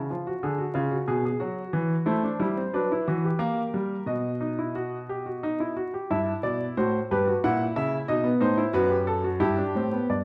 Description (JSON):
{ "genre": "classical, baroque-style 3-part fugue for grand piano", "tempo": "90 BPM", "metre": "3/4", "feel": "straight", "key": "E minor", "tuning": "A4 = 440 Hz", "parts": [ { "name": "clear grand piano", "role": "solo", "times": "0.0-10.2 s", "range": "F#2 to F#5", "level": "-27 LUFS", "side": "equal", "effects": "none" } ], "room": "wet recital hall reverb, RT60 1.4 s", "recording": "vinyl crackle", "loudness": "-27 LUFS", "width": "mono", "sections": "0.0-6.1 A section; 6.1-10.1 B section", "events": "none", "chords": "0.1 C#7; 1.4 Esus2; 2.1 Am; 3.4 Gm; 4.1 B; 6.1 Em/G; 7.4 F#7/A#; 8.1 B7; 9.4 Em/G" }